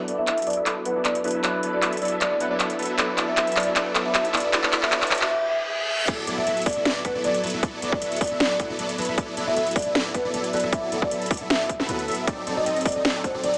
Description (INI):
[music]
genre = future bass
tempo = 155 BPM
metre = 4/4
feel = half-time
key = D major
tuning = A4 = 440 Hz
[part]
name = tine electric piano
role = accompaniment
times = 0.0-6.1 s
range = F#3 to B4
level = -34 LUFS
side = equal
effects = sidechain pumping
[part]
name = supersaw chords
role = riff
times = 0.0-13.6 s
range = F#3 to F#5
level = -30 LUFS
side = equal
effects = subtle chorus, sidechain pumping, low-pass filter
[part]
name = riser and reverse cymbal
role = sound effects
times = 0.0-6.1 s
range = none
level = -35 LUFS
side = equal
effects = none
[part]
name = trap drum kit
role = drums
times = 0.1-13.6 s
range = crash cymbal, handclaps, hi-hat, snare drum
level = -28 LUFS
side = equal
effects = overdrive
[part]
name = marimba with medium mallets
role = melody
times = 0.2-13.6 s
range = B4 to E5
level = -29 LUFS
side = equal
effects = vintage 12-bit sampler grit, sidechain pumping, low-pass filter
[part]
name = warm 808-style bass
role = bass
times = 6.1-13.6 s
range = D1 to D2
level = -43 LUFS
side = equal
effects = sidechain pumping
[part]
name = electronic kick drum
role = drums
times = 6.1-13.3 s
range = none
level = -28 LUFS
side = equal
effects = overdrive
[sound]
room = moderate digital room reverb, RT60 1.1 s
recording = high-pass filter, small speaker sound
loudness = -24 LUFS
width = mono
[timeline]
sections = 0.0-6.1 A section; 6.1-13.6 B section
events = build-up 0.0-6.1; drum fill 0.0-5.3; filter sweep on supersaw synth 0.0-6.1; filter sweep 0.0-6.1; break 5.3-6.1; reverse cymbal 5.3-6.1; drop 6.1-13.6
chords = 0.0 D69; 12.3 D7b9